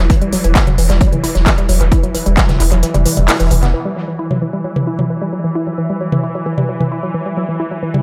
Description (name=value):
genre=driving peak-time techno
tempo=132 BPM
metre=4/4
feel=straight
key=E minor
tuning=A4 = 440 Hz
part: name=woody wave-folded pluck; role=riff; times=0.0-8.0 s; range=E3 to E4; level=-22 LUFS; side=equal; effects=chorus, sidechain pumping, dub echo
part: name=warm sub bass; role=bass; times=0.0-3.7 s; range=E1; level=-16 LUFS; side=equal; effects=overdrive, sidechain pumping, low-pass filter
part: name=swarming drone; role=drone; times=0.0-8.0 s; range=E3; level=-26 LUFS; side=equal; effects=built-in reverb, phaser, sidechain pumping
part: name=electronic kick drum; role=drums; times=0.1-2.5 s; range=none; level=-16 LUFS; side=equal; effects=overdrive
part: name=swinging big-band drum kit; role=drums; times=0.1-3.7 s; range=hi-hat, snare drum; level=-31 LUFS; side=equal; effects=high-pass filter on hats, high-pass filter on snare, high-pass filter on room, analog delay
part: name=techno drum kit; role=drums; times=0.1-8.0 s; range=handclaps, hi-hat, toms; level=-20 LUFS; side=equal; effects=overdrive, sidechain pumping on hats, sidechain pumping on toms, analog delay
room=light reverb, digital ambience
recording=echo-heavy mix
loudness=-15 LUFS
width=mono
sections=0.0-3.7 A section; 3.7-8.0 B section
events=filter sweep on synth arpeggio sound 0.0-3.7; kick drops out 2.8-3.7; band accent 3.3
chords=none